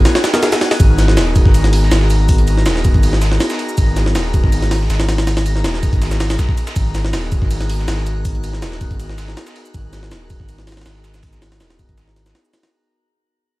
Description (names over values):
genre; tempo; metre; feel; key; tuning
drum and bass, jungle; 161 BPM; 4/4; straight; G# minor; A4 = 439 Hz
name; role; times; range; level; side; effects
airy breathy pad; sustained chords; 0.0-12.7 s; B3 to A#4; -24 LUFS; equal; chorus
saturated sub bass; bass; 0.0-12.3 s; D#1 to G#1; -17 LUFS; equal; tube saturation
drifting glass-harmonics texture; texture; 0.0-12.7 s; F#5 to A#6; -31 LUFS; left 1 dB; chorus, built-in reverb
breakbeat sampler-style drum kit; drums; 0.1-12.7 s; hi-hat, shaker, snare drum; -29 LUFS; right 1 dB; high-pass filter on perc, high-pass filter on snare, high-pass filter on hats, high-pass filter on room
jungle sampler-style drum kit; drums; 0.1-12.7 s; hi-hat, kick drum, ride cymbal, snare drum; -16 LUFS; equal; none
bell-like tine electric piano; stabs; 0.3-0.5 s; B3 to A#4; -23 LUFS; equal; none
room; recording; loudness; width
little or no reverb; vinyl crackle; -13 LUFS; side -19 dB against mid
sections
0.0-12.7 A section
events
filter sweep on analog synth pad 0.0-12.7; break 0.1-0.8; fade-out 0.8-12.7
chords
0.0 G#m9